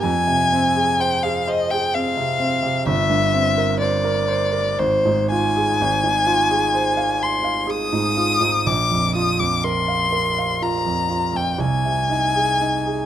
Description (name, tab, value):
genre	classical, romantic duo for violin and grand piano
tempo	62 BPM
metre	3/4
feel	uneven beats, rubato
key	unclear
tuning	A4 = 440 Hz
part	warm violin	melody	0.0-13.1 s	C5 to Eb6	-19 LUFS	left 3 dB	none
part	clear grand piano	accompaniment	0.0-13.1 s	G1 to Ab5	-21 LUFS	right 3 dB	none
room	light reverb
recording	close, detailed microphones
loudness	-17 LUFS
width	side -10 dB against mid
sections	0.0-13.1 A section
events	none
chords	0.0 Fm; 2.9 C7/G; 4.8 Fm/Ab; 8.7 Bb5; 11.6 Ab/C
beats	| 0.02 1.00 1.96 | 2.88 3.81 4.79 | 5.80 6.75 7.70 | 8.66 9.64 10.62 | 11.60 12.61